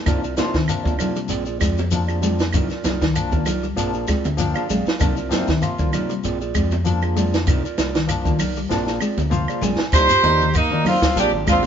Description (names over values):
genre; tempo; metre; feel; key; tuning
afrobeat; 97 BPM; 4/4; swing 54% on 16ths; C minor; A4 = 440 Hz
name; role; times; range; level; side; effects
barky tine electric piano; accompaniment; 0.1-11.7 s; F3 to Ab5; -28 LUFS; left 5 dB; overdrive, medium tremolo
mellow electric guitar; arpeggios; 0.1-11.6 s; C3 to Ab3; -26 LUFS; left 3 dB; harmonic tremolo
mellow electric guitar; stabs; 0.1-11.7 s; C4 to D5; -28 LUFS; right 6 dB; none
fingered electric bass; bass; 0.1-11.7 s; Ab1 to C3; -25 LUFS; equal; none
compact cocktail drum kit; drums; 0.1-11.6 s; hi-hat, kick drum, snare drum, toms; -22 LUFS; right 1 dB; none
claves; percussion; 0.1-11.6 s; none; -33 LUFS; right 7 dB; none
congas; percussion; 0.1-11.7 s; none; -28 LUFS; equal; none
shekere; percussion; 0.1-11.7 s; none; -30 LUFS; left 4 dB; none
warm horn section; melody; 9.9-11.6 s; Eb4 to C5; -17 LUFS; right 1 dB; none
warm alto saxophone; second line; 9.9-11.6 s; Bb3 to G4; -25 LUFS; right 4 dB; none
room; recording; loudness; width
moderate stone room reverb, RT60 1.3 s; band playing live in one room, nothing above 7.6 kHz; -18 LUFS; side -8 dB against mid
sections
0.0-9.9 A section; 9.9-11.7 B section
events
tine electric piano fill 4.1-5.0, 9.0-9.9; drum fill 8.7-9.9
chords
0.1 Cm11; 1.3 Bb9; 2.5 Cm11; 3.8 Bb9; 5.0 Cm11; 6.2 Bb9; 7.5 Cm11; 8.7 Bb9; 9.9 Cm11